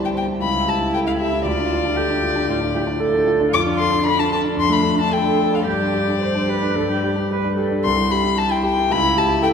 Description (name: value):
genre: quick classical-period movement for piano trio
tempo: 114 BPM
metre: 4/4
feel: rubato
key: unclear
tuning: A4 = 440 Hz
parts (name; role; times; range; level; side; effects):
- warm concert grand piano; accompaniment; 0.0-9.5 s; C2 to C5; -21 LUFS; left 1 dB; none
- warm violin; melody; 0.1-9.5 s; D5 to D6; -21 LUFS; left 5 dB; none
- dark cello; second line; 0.4-9.5 s; D4 to C5; -23 LUFS; right 5 dB; none
room: wet cathedral reverb, RT60 5.2 s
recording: recorded in a church or concert hall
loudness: -17 LUFS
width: side -6 dB against mid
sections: 0.0-9.5 A section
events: none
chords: 0.4 A7/C#; 1.5 Dm; 3.5 Dm/F; 5.7 Gsus4; 6.8 G; 7.8 C; 8.9 A7/C#